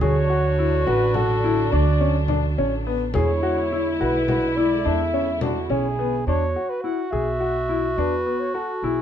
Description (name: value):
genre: contemporary instrumental, chamber music in an uneven meter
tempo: 211 BPM (eighths)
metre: 11/8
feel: straight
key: E mixolydian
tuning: A4 = 439 Hz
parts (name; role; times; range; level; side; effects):
- breathy flugelhorn; melody; 0.0-9.0 s; F#4 to F#5; -26 LUFS; right 3 dB; none
- warm clarinet; second line; 0.0-9.0 s; E4 to F#4; -26 LUFS; left 1 dB; none
- dark symphonic string section; sustained chords; 0.0-6.2 s; D3 to E4; -30 LUFS; left 2 dB; none
- clear grand piano; arpeggios; 0.0-9.0 s; B3 to G#4; -25 LUFS; left 5 dB; none
- upright bass; bass; 0.0-9.0 s; A1 to E2; -24 LUFS; right 2 dB; none
- frame drum; percussion; 0.0-5.7 s; none; -29 LUFS; left 2 dB; none
room: light reverb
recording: dark, warm production, nothing above 11.0 kHz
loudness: -19 LUFS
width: side -9 dB against mid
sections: 0.0-6.3 A section; 6.3-9.0 B section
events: none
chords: 0.0 Dmaj7; 3.1 E7; 6.3 E5